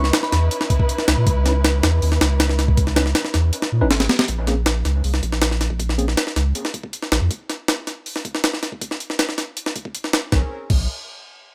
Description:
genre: drum and bass, jungle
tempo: 159 BPM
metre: 4/4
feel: straight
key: unclear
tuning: A4 = 436 Hz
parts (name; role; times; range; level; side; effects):
- dark chamber string section; sustained chords; 0.0-4.2, 10.3-10.5 s; C4 to Cb5; -31 LUFS; equal; vintage 12-bit sampler grit
- soft dub sub bass; bass; 0.0-7.3, 10.3-10.9 s; Ab1 to Bb2; -21 LUFS; equal; none
- jungle sampler-style drum kit; drums; 0.0-10.8 s; crash cymbal, hi-hat, kick drum, snare drum; -23 LUFS; equal; high-pass filter on kick, high-pass filter on hats, high-pass filter on snare, high-pass filter on cymbals
- tine electric piano; stabs; 1.5-6.0 s; Bb3 to Cb5; -29 LUFS; equal; dub echo
room: little or no reverb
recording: none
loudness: -20 LUFS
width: mono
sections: 0.0-4.3 A section; 4.3-10.3 B section; 10.3-11.5 C section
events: drop 0.0-4.3; kick drops out 3.5-4.3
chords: 0.0 Dbm9; 4.3 N.C.; 10.3 Bbm9

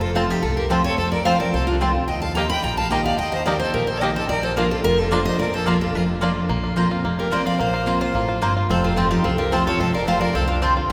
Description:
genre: bluegrass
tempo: 218 BPM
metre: 4/4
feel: straight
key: Bb major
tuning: A4 = 440 Hz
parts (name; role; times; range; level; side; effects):
- picked steel-string acoustic guitar; melody; 0.0-10.9 s; F4 to Cb6; -27 LUFS; equal; none
- clear fiddle; second line; 0.0-10.6 s; C4 to G5; -31 LUFS; equal; none
- picked steel-string acoustic guitar; accompaniment; 0.0-10.9 s; F2 to G4; -26 LUFS; equal; none
- upright bass; bass; 0.0-10.9 s; F1 to Eb2; -29 LUFS; equal; none
- mandolin; stabs; 0.1-10.7 s; Bb3 to Bb5; -29 LUFS; equal; none
- bluegrass banjo; melody; 0.2-10.9 s; F3 to G4; -31 LUFS; equal; none
room: wet cathedral reverb, RT60 5.6 s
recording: recorded in a church or concert hall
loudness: -21 LUFS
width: mono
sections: 0.0-6.5 A section; 6.5-10.9 A section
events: none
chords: 0.0 F; 2.1 Eb; 4.3 Bb; 6.5 Bbsus2; 8.7 F

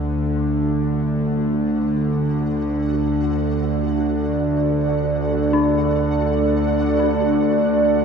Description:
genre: ambient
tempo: free time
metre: none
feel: none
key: D major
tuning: A4 = 442 Hz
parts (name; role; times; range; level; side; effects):
- dark analog pad; sustained chords; 0.0-8.0 s; D4 to D5; -21 LUFS; right 2 dB; chorus, phaser
- dark detuned synth bell; arpeggios; 0.0-8.0 s; D4; -27 LUFS; left 8 dB; chorus, ping-pong delay
- bowed-like drone; drone; 0.0-8.0 s; D2 to D3; -20 LUFS; equal; built-in reverb
- flickering grainy texture; texture; 0.0-8.0 s; F#4; -34 LUFS; right 1 dB; built-in reverb, analog chorus
room: wet cathedral reverb, RT60 5.5 s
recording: dreamy mix soaked in reverb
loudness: -17 LUFS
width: side -6 dB against mid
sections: 0.0-8.0 A section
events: fade-in on synth texture 0.0-8.0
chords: 0.0 D

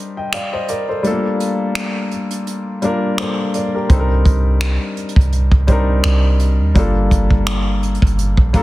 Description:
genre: contemporary R&B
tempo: 84 BPM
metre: 4/4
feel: swing 54% on 16ths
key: C dorian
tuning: A4 = 440 Hz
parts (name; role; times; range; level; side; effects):
- warm grand piano; accompaniment; 0.0-8.6 s; G3 to Bb5; -19 LUFS; left 2 dB; none
- vintage brush drum kit; drums; 0.3-8.6 s; finger snaps, hi-hat, kick drum; -18 LUFS; equal; soft clipping on snare
- soft 808-style bass; bass; 3.9-8.6 s; G1 to Eb2; -15 LUFS; right 1 dB; none
room: studio reverb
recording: dense, heavily limited modern master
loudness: -14 LUFS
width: side -17 dB against mid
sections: 0.0-8.6 A section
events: break 0.0-3.9; grand piano fill 8.2-8.6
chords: 0.0 Cm9; 1.0 Gm9; 3.9 Cm9; 6.8 Gm9

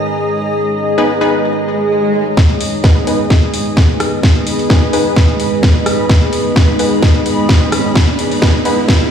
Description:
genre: bass house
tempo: 129 BPM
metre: 4/4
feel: swing 54% on 16ths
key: G# minor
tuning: A4 = 436 Hz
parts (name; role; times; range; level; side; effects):
- deep dark ambient pad; sustained chords; 0.0-9.1 s; G#3 to C#5; -18 LUFS; right 1 dB; chorus, built-in reverb, sidechain pumping
- granular cloud pad; texture; 0.0-9.1 s; G#4 to B5; -19 LUFS; left 1 dB; built-in reverb, sidechain pumping
- orchestra-hit-like synth stab; stabs; 1.0-8.8 s; B3 to B4; -18 LUFS; left 1 dB; built-in reverb, sidechain pumping, ping-pong delay
- swell and riser; sound effects; 1.6-9.1 s; none; -22 LUFS; right 3 dB; none
- electronic kick drum; drums; 2.4-9.0 s; none; -10 LUFS; equal; studio reverb
- garage drum kit; drums; 2.4-9.0 s; hi-hat, rim click, snare drum; -17 LUFS; left 1 dB; low-pass filter on snare, studio reverb, low-pass filter on hats
room: light reverb, digital ambience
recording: played on a big sound system in a bare room, stone room reverb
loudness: -10 LUFS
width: side -8 dB against mid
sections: 0.0-2.4 A section; 2.4-9.1 B section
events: swell 1.6-2.4; build-up 2.4-9.1; drum fill 2.4-9.1; riser 2.4-9.1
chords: 0.0 G#m

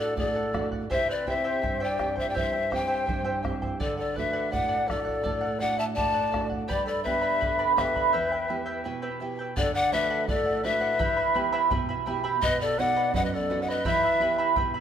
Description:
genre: andean folk, Andean ensemble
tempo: 84 BPM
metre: 2/4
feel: straight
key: unclear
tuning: A4 = 440 Hz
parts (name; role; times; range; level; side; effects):
- breathy pan flute; melody; 0.0-14.6 s; D5 to A5; -27 LUFS; left 3 dB; none
- breathy mellow large quena; second line; 0.0-14.6 s; G4 to E5; -32 LUFS; left 1 dB; none
- charango; accompaniment; 0.0-14.8 s; E4 to B5; -30 LUFS; right 4 dB; none
- nylon-string guitar; accompaniment; 0.0-14.8 s; E2 to G4; -33 LUFS; right 4 dB; none
- bombo; percussion; 0.2-14.7 s; none; -34 LUFS; equal; none
room: moderate recital hall reverb, RT60 1.8 s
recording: minimal, uncompressed stereo recording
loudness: -24 LUFS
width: side -8 dB against mid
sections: 0.0-9.6 A section; 9.6-14.8 B section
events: break 8.1-9.6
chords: 0.0 D; 0.9 C; 3.8 D; 6.7 G; 8.1 Em; 9.6 D; 11.0 Em; 12.4 B; 13.8 Em

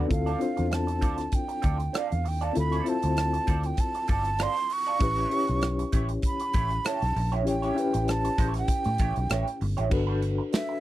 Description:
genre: lush 1970s-style soul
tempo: 98 BPM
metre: 4/4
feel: swing 54% on 16ths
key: unclear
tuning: A4 = 442 Hz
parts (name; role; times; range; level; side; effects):
- reed electric piano; accompaniment; 0.0-10.8 s; B3 to C#5; -31 LUFS; left 4 dB; fast tremolo
- electric guitar through a small old amp; riff; 0.0-10.7 s; G3 to D5; -35 LUFS; right 7 dB; wah
- vintage muted fingered electric bass; bass; 0.0-10.4 s; G1 to A2; -28 LUFS; equal; none
- breathy jazz flute; melody; 0.1-10.8 s; E5 to C#6; -30 LUFS; right 3 dB; none
- modern studio drum kit; drums; 0.1-10.7 s; crash cymbal, hi-hat, kick drum, rim click, snare drum; -29 LUFS; equal; none
room: little or no reverb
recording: dry, close 1970s-style studio recording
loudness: -24 LUFS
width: side -14 dB against mid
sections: 0.1-9.9 A section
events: none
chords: 0.1 Dm7; 5.0 A7; 9.9 Gmaj7

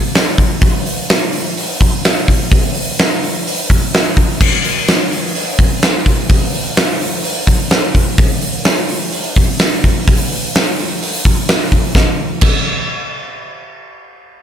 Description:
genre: rock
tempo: 127 BPM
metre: 4/4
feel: straight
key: none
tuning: none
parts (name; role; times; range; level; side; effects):
- huge arena drum kit; drums; 0.1-12.5 s; crash cymbal, hi-hat, kick drum, snare drum; -12 LUFS; equal; none
room: light reverb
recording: none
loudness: -12 LUFS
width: side -9 dB against mid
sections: 0.0-11.9 A section; 11.9-14.4 B section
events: none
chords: none

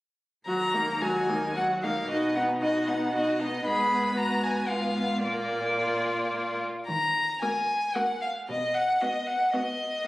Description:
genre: quick classical-period movement for string quartet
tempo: 113 BPM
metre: 3/4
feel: rubato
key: Eb minor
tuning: A4 = 440 Hz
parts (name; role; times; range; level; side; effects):
- rich violin; melody; 0.5-10.1 s; D5 to Cb6; -27 LUFS; left 1 dB; none
- warm violin; second line; 0.5-9.9 s; D#4 to Ab4; -33 LUFS; left 1 dB; none
- warm viola; accompaniment; 0.5-9.9 s; Gb3 to D#4; -30 LUFS; equal; none
- dark cello; bass; 0.5-8.9 s; Eb2 to Eb3; -36 LUFS; right 1 dB; none
room: wet recital hall reverb, RT60 1.7 s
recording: recorded on a phone in the room, studio reverb, compression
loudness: -25 LUFS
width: side -18 dB against mid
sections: 0.5-10.1 A section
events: none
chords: 0.5 Ebm; 2.1 B; 3.7 Abm; 5.2 Bb; 6.9 Ebm; 8.5 B

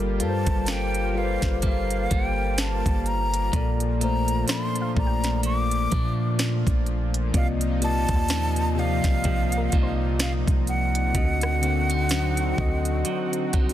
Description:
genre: contemporary R&B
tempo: 63 BPM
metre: 4/4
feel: swing 58% on 16ths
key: G minor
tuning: A4 = 440 Hz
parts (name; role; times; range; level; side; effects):
- mellow tine electric piano; accompaniment; 0.0-13.7 s; Bb2 to F#5; -29 LUFS; left 6 dB; none
- lush unison pad; sustained chords; 0.0-13.7 s; Bb2 to G4; -33 LUFS; equal; chorus
- clean electric guitar; arpeggios; 0.0-13.7 s; Bb2 to A4; -33 LUFS; right 7 dB; none
- warm 808-style bass; bass; 0.0-13.7 s; G1 to Bb2; -26 LUFS; equal; none
- breathy concert flute; melody; 0.2-13.7 s; F5 to D6; -29 LUFS; equal; none
- trap drum kit; drums; 0.2-13.7 s; hi-hat, kick drum, rim click, snare drum; -25 LUFS; equal; none
- soft round pluck; texture; 4.5-13.7 s; G4 to G5; -40 LUFS; right 1 dB; chorus, tape echo
room: little or no reverb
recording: dense, heavily limited modern master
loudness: -21 LUFS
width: side -12 dB against mid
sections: 0.0-13.7 A section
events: none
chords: 0.0 Gm9; 3.5 Bbmaj7; 7.3 Cm11; 11.2 D7b9

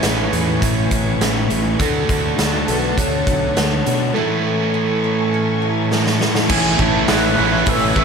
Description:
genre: rock, shoegaze and dream pop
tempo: 102 BPM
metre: 4/4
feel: straight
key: A major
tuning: A4 = 441 Hz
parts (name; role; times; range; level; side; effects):
- soft string machine; sustained chords; 0.0-8.0 s; A4 to C#6; -27 LUFS; equal; ensemble chorus
- picked twelve-string acoustic guitar; arpeggios; 0.0-8.0 s; E3 to G#4; -28 LUFS; right 2 dB; wide subtle chorus, analog delay
- overdriven electric guitar; riff; 0.0-8.0 s; A2 to F#4; -22 LUFS; right 11 dB; reverse reverb
- thick fuzz guitar; riff; 0.0-8.0 s; A2 to D4; -22 LUFS; left 8 dB; distortion, ensemble chorus
- fuzz fingered electric bass; bass; 0.0-8.0 s; A1 to B2; -23 LUFS; equal; overdrive
- raw garage drum kit; drums; 0.0-8.0 s; crash cymbal, hi-hat, kick drum, snare drum; -20 LUFS; equal; none
- hollow clarinet-like synth lead; melody; 1.8-8.0 s; A4 to F#6; -24 LUFS; left 1 dB; chorus, analog delay
- biting overdriven guitar; riff; 6.5-8.0 s; A2 to E4; -23 LUFS; right 1 dB; none
room: light reverb, studio reverb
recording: none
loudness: -15 LUFS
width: side -6 dB against mid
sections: 0.0-6.5 A section; 6.5-8.0 B section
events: drum fill 5.9-6.5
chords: 0.0 Amaj9; 1.8 Dmaj7; 4.2 Amaj7; 6.5 Amaj9

